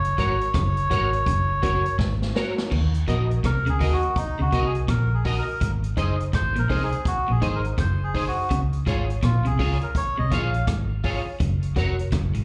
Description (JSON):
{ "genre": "roots reggae", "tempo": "83 BPM", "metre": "4/4", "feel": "swing 62% on 16ths", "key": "Eb dorian", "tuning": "A4 = 441 Hz", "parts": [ { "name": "melodica", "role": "melody", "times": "0.0-10.7 s", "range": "Eb4 to F5", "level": "-30 LUFS", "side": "equal", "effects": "plate reverb, slapback echo" }, { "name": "clean electric guitar", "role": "riff", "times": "0.0-12.4 s", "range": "F2 to Eb3", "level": "-35 LUFS", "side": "equal", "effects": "slapback echo" }, { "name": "vintage muted fingered electric bass", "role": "bass", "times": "0.0-12.4 s", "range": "F1 to Eb2", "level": "-26 LUFS", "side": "equal", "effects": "none" }, { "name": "vintage drum kit", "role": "drums", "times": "0.0-12.4 s", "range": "crash cymbal, hi-hat, kick drum, rim click, snare drum", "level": "-30 LUFS", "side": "equal", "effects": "vintage 12-bit sampler grit" }, { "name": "electric guitar at the edge of break-up", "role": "accompaniment", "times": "0.2-11.9 s", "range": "F4 to Eb5", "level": "-35 LUFS", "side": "equal", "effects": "ensemble chorus, plate reverb, slapback echo" }, { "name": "overdriven reed electric piano", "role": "stabs", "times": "0.2-12.0 s", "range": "Eb4 to Eb5", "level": "-34 LUFS", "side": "equal", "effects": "fast tremolo, plate reverb, slapback echo" } ], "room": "light reverb", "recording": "live gig heard through the venue's PA, club reverb", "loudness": "-23 LUFS", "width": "mono", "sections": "0.0-2.7 A section; 2.7-12.4 B section", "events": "drum fill 2.0-2.7; melodica solo 2.7-12.4", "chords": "0.0 Gb; 2.7 Ebm; 5.6 Ab; 8.5 Db; 11.4 Gb" }